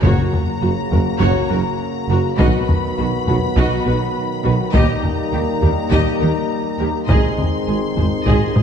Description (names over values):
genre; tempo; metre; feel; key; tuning
cinematic, epic orchestral film score; 102 BPM; 4/4; straight; unclear; A4 = 438 Hz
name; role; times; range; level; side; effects
warm symphonic violin section; melody; 0.0-8.6 s; A#5 to B#5; -27 LUFS; left 6 dB; none
rich symphonic violin section; second line; 0.0-8.6 s; F#4 to D#5; -28 LUFS; left 5 dB; none
rich symphonic viola section; accompaniment; 0.0-8.6 s; F#4 to G#4; -26 LUFS; right 2 dB; none
mellow French horn section; sustained chords; 0.0-8.6 s; A#3 to F#4; -25 LUFS; left 5 dB; none
warm trombone section; sustained chords; 0.0-8.6 s; C#3 to G#3; -26 LUFS; right 3 dB; none
warm symphonic cello section; bass; 0.0-8.6 s; F#2 to D#3; -24 LUFS; right 3 dB; none
warm symphonic double bass section; bass; 0.0-8.6 s; F#1 to D#2; -23 LUFS; right 3 dB; none
warm tuba; bass; 0.0-8.6 s; F#1 to D#2; -26 LUFS; right 4 dB; none
taiko ensemble; drums; 0.0-8.6 s; none; -19 LUFS; left 1 dB; none
timpani; percussion; 0.0-0.9 s; F#2; -22 LUFS; left 3 dB; none
room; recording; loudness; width
moderate concert hall reverb, RT60 2.2 s; dark, warm production; -15 LUFS; side -8 dB against mid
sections
0.0-8.6 A section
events
none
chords
0.0 F#; 2.4 B; 4.7 D#; 7.1 G#